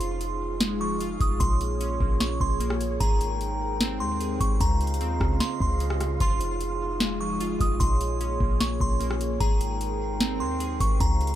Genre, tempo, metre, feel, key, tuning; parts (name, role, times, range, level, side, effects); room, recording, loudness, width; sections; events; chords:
hip hop, atmospheric cloud-rap; 150 BPM; 4/4; half-time; A4 = 440 Hz
glassy synth bell; melody; 0.0-11.4 s; Bb5 to Eb6; -31 LUFS; right 1 dB; chorus, ping-pong delay
glass harmonica; sustained chords; 0.0-11.4 s; Ab3 to G5; -33 LUFS; right 2 dB; sidechain pumping
glassy digital keys; arpeggios; 0.0-11.0 s; Db3 to Ab4; -34 LUFS; equal; chorus, tremolo, ping-pong delay
clean 808-style bass; bass; 0.0-11.4 s; F1 to Eb2; -28 LUFS; equal
booming analog drum machine; drums; 0.0-11.3 s; hi-hat, kick drum, rim click, snare drum; -26 LUFS; equal; overdrive
wind-like tuned noise texture; texture; 0.0-11.4 s; Ab3 to Eb5; -40 LUFS; equal; built-in reverb
little or no reverb; -23 LUFS; side -12 dB against mid
0.0-11.4 A section
0.0 Fm7; 1.4 Bbm7; 3.0 Abmaj7; 4.6 Dbmaj7; 6.2 Fm7; 7.8 Bbm7; 9.4 Abmaj7